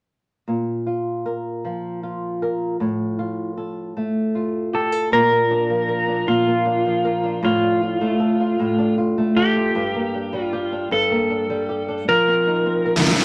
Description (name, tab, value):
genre	pop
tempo	52 BPM (dotted quarters)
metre	6/8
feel	straight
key	Bb major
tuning	A4 = 440 Hz
part	flamenco guitar	accompaniment	0.5-13.2 s	G2 to Bb4	-24 LUFS	equal	none
part	clean lap steel guitar	melody	4.7-13.2 s	F4 to Bb4	-22 LUFS	equal	none
room	moderate club reverb, RT60 0.5 s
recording	tube saturation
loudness	-21 LUFS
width	mono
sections	0.5-5.1 A section; 5.1-13.2 B section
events	none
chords	0.5 Bb5; 2.8 F/A; 5.1 Bb; 7.4 Dm/A; 9.8 Gm; 12.1 F7sus4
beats	| 0.47 1.63 | 2.79 3.95 | 5.11 6.27 | 7.43 8.59 | 9.75 10.91 | 12.07 13.23